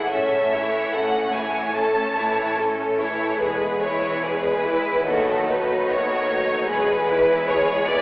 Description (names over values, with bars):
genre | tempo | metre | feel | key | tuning
classical, slow romantic movement for symphony orchestra | 73 BPM | 4/4 | rubato | A major | A4 = 440 Hz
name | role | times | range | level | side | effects
warm studio violin section | melody | 0.0-8.0 s | A4 to A5 | -23 LUFS | equal | none
rich symphonic violin section | second line | 0.0-8.0 s | A3 to C#5 | -24 LUFS | equal | none
warm chamber viola section | accompaniment | 0.0-8.0 s | D#3 to C#4 | -25 LUFS | equal | none
concert harp | arpeggios | 0.0-8.0 s | A2 to C#5 | -29 LUFS | equal | none
rich studio cello section | bass | 0.0-8.0 s | D#2 to A2 | -34 LUFS | equal | none
dark studio double bass section | bass | 0.1-7.5 s | E1 to D#2 | -45 LUFS | equal | none
room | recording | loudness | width
wet recital hall reverb, RT60 1.9 s | recorded in a church or concert hall, telephone sound | -19 LUFS | side -23 dB against mid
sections
0.0-8.0 A section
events
none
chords
0.1 A; 3.4 E; 5.1 B7/D#; 6.7 E